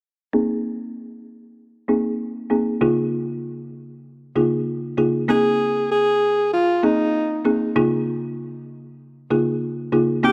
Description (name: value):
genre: afrobeats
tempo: 97 BPM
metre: 4/4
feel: swing 55% on 16ths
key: Ab major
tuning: A4 = 440 Hz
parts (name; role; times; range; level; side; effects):
- folk marimba with medium mallets; accompaniment; 0.3-10.3 s; Db3 to Ab4; -23 LUFS; equal; low-pass filter
- breathy alto saxophone; melody; 5.3-10.3 s; Eb4 to Ab4; -21 LUFS; equal; digital delay
room: light reverb, small room ambience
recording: none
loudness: -21 LUFS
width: mono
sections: 0.3-5.3 A section; 5.3-10.3 B section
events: filter sweep on marimba 0.3-5.3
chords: 0.3 Abadd9; 2.8 Db6; 5.3 Abadd9; 7.8 Db6